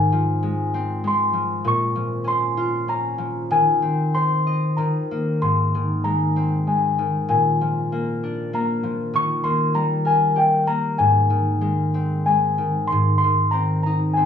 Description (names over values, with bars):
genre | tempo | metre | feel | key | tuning
children's music, lullaby | 96 BPM | 3/4 | rubato | Ab major | A4 = 439 Hz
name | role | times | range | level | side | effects
small celesta | melody | 0.0-14.3 s | G5 to Db6 | -21 LUFS | left 1 dB | none
concert harp | accompaniment | 0.0-14.3 s | Ab2 to Eb5 | -21 LUFS | left 1 dB | none
room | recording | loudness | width
moderate small room reverb, RT60 0.5 s | worn, warbling old tape, cassette tape, warbly pitch drift, small room ambience | -18 LUFS | side -8 dB against mid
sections
0.0-12.9 A section; 12.9-14.3 A section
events
none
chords
0.0 Fm/Ab; 1.7 Bbmadd9; 3.5 Ab/Eb; 4.8 Eb5; 5.4 Ab; 7.3 Bb; 9.1 Eb; 11.0 Ab